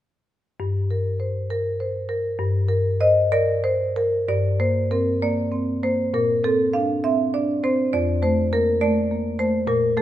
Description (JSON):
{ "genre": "classical, contemporary piece for solo marimba", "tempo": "60-69 BPM (dotted quarters)", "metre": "6/8", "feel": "rubato", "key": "unclear", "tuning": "A4 = 440 Hz", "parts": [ { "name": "marimba with medium hard mallets", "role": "solo", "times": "0.6-10.0 s", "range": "F2 to F5", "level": "-19 LUFS", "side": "equal", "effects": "none" } ], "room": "moderate recital hall reverb, RT60 1.5 s", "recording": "none", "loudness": "-19 LUFS", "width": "side -12 dB against mid", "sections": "0.6-4.3 A section; 4.3-10.0 B section", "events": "none", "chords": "0.6 C5/G; 6.1 Bbadd9; 7.9 F", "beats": "| 0.60 1.51 | 2.40 3.31 | 4.29 5.21 | 6.12 7.03 | 7.92 8.80 | 9.67" }